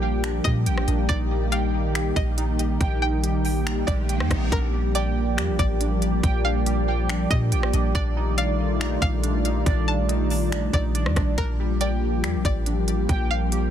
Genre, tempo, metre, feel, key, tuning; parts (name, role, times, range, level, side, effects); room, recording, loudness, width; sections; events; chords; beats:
hip hop, atmospheric cloud-rap; 140 BPM; 4/4; half-time; Bb major; A4 = 439 Hz
string-like resonator pluck; melody; 0.0-13.7 s; Bb4 to A5; -32 LUFS; left 1 dB; chorus, phaser, ping-pong delay
dark analog pad; sustained chords; 0.0-13.7 s; Eb3 to D5; -26 LUFS; left 1 dB; chorus, sidechain pumping
warbly lo-fi synth keys; arpeggios; 0.0-13.7 s; D4 to G5; -31 LUFS; right 4 dB; chorus, ping-pong delay
clean 808-style bass; bass; 0.0-13.7 s; A1 to Bb2; -24 LUFS; equal
trap drum kit; drums; 0.2-13.6 s; finger snaps, hi-hat, kick drum, rim click; -26 LUFS; equal; soft clipping on snare
riser; sound effects; 3.5-4.5 s; -36 LUFS; right 3 dB
little or no reverb; dense, heavily limited modern master; -21 LUFS; side -10 dB against mid
0.0-4.5 A section; 4.5-13.7 B section
riser 3.5-4.5
0.0 Bb6; 1.1 Ebmaj7/Bb; 4.5 Bb6; 8.0 F13/Bb; 11.4 Bb6
0.23 0.66 | 1.09 1.52 1.95 2.38 | 2.81 3.23 3.66 4.09 | 4.52 4.95 5.38 5.81 | 6.24 6.66 7.09 7.52 | 7.95 8.38 8.81 9.23 | 9.66 10.09 10.52 10.95 | 11.38 11.81 12.23 12.66 | 13.09 13.52